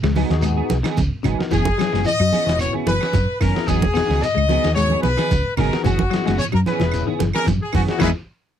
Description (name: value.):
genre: afrobeat.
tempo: 111 BPM.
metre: 4/4.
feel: straight.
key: unclear.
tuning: A4 = 442 Hz.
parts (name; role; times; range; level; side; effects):
clean electric guitar; arpeggios; 0.0-8.1 s; C#3 to B3; -25 LUFS; left 8 dB; ensemble chorus.
hollow-body short-scale fingered electric bass; bass; 0.0-8.1 s; E1 to F#2; -21 LUFS; equal; none.
trip hop sampler-style drum kit; drums; 0.0-8.1 s; hi-hat, kick drum, snare drum; -25 LUFS; right 1 dB; none.
claves; percussion; 0.0-8.1 s; none; -32 LUFS; right 24 dB; none.
clean electric guitar; stabs; 0.2-8.1 s; E3 to G#4; -26 LUFS; right 12 dB; analog chorus.
congas; percussion; 0.2-8.1 s; none; -25 LUFS; right 6 dB; none.
shekere; percussion; 0.2-8.1 s; none; -31 LUFS; right 2 dB; none.
barky tine electric piano; accompaniment; 0.3-8.1 s; B3 to A#4; -28 LUFS; left 13 dB; overdrive, ensemble chorus.
bright horn section; melody; 1.5-8.1 s; E4 to D#5; -22 LUFS; left 3 dB; none.
room: little or no reverb.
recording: dry, close 1970s-style studio recording.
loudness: -17 LUFS.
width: side -9 dB against mid.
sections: 0.0-8.6 A section.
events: band accent 8.0-8.6.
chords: 0.0 Emaj9 (rootless); 1.5 Emaj9; 8.0 Emaj7.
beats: 0.43 0.97 | 1.51 2.06 2.60 3.14 | 3.68 4.22 4.76 5.31 | 5.85 6.39 6.93 7.47 | 8.01.